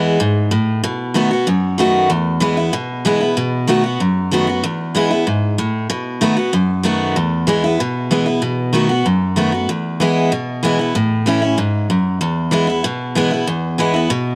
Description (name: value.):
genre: rock.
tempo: 190 BPM.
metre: 4/4.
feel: straight.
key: E major.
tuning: A4 = 439 Hz.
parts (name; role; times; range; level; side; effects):
picked steel-string acoustic guitar; solo; 0.0-14.4 s; E2 to F#4; -17 LUFS; equal; none.
room: light reverb.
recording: none.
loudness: -17 LUFS.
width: mono.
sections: 0.0-9.7 A section; 9.7-14.4 B section.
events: none.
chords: 0.0 E; 0.8 B7; 2.1 E; 3.4 B7; 4.6 E; 5.9 B7; 7.2 E; 8.4 B7; 9.7 E; 11.0 A; 12.2 E.